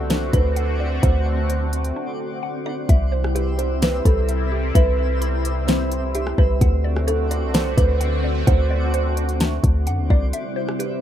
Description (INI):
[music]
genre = hip hop, atmospheric cloud-rap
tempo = 129 BPM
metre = 4/4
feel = half-time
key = C lydian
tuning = A4 = 440 Hz
[part]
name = kalimba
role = melody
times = 0.0-11.0 s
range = G4 to D5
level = -27 LUFS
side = right 3 dB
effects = low-pass filter, ping-pong delay, plate reverb
[part]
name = sweeping resonant pad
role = sustained chords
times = 0.0-11.0 s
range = C3 to F#4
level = -28 LUFS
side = left 1 dB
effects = chorus, sidechain pumping, plate reverb
[part]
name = mallet-like synth pluck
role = arpeggios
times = 0.0-11.0 s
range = C4 to B5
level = -32 LUFS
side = left 2 dB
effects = chorus, phaser, low-pass filter, ping-pong delay, plate reverb
[part]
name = warm 808-style bass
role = bass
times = 0.0-10.3 s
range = C2 to F#2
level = -21 LUFS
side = equal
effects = none
[part]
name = twinkling granular texture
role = texture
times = 0.0-11.0 s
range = C4 to E5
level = -33 LUFS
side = equal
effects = built-in reverb, plate reverb
[part]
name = smooth R&B drum kit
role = drums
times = 0.1-10.9 s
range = hi-hat, kick drum, rim click, snare drum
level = -19 LUFS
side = equal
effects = none
[sound]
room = little or no reverb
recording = rough home demo mix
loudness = -18 LUFS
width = side -11 dB against mid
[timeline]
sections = 0.0-2.9 A section; 2.9-11.0 B section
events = break 2.0-2.9, 10.3-10.8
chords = 0.0 D7; 2.9 Cmaj7; 6.6 D7; 10.3 Cmaj7